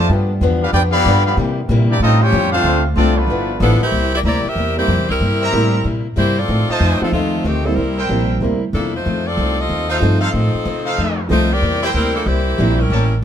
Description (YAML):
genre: jazz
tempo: 187 BPM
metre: 4/4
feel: swing 64% on 8ths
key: C mixolydian from 3.9 s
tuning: A4 = 439 Hz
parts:
  - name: clear trumpet section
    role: melody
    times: 0.0-3.6 s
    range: A3 to B5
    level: -18 LUFS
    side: left 1 dB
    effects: none
  - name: bright trombone section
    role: second line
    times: 0.0-3.6 s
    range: D3 to G4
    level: -23 LUFS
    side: right 1 dB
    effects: none
  - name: upright bass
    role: bass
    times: 0.0-13.2 s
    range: G1 to C3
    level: -17 LUFS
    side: equal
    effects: none
  - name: picked acoustic archtop guitar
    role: accompaniment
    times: 0.1-13.1 s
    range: F2 to E#4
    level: -23 LUFS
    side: left 5 dB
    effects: none
  - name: bright trombone section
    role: sustained chords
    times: 0.1-3.9 s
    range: E3 to A4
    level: -29 LUFS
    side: left 2 dB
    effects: none
  - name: edgy saxophone section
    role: melody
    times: 3.6-13.1 s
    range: Eb3 to E5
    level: -20 LUFS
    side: left 1 dB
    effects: none
  - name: clear trumpet section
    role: stabs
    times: 4.2-13.2 s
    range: Eb4 to Bb5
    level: -24 LUFS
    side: equal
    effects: none
  - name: warm upright piano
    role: accompaniment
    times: 4.8-12.8 s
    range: F3 to C5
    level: -21 LUFS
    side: right 2 dB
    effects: none
room: little or no reverb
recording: close, detailed microphones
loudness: -14 LUFS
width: side -9 dB against mid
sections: 0.0-3.9 A section; 3.9-13.2 B section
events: none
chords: 0.1 G7; 1.4 C7; 2.0 A7alt; 2.6 Dm7; 3.3 G13; 3.9 C7; 6.5 F7; 7.8 C7; 9.0 F7; 11.6 C7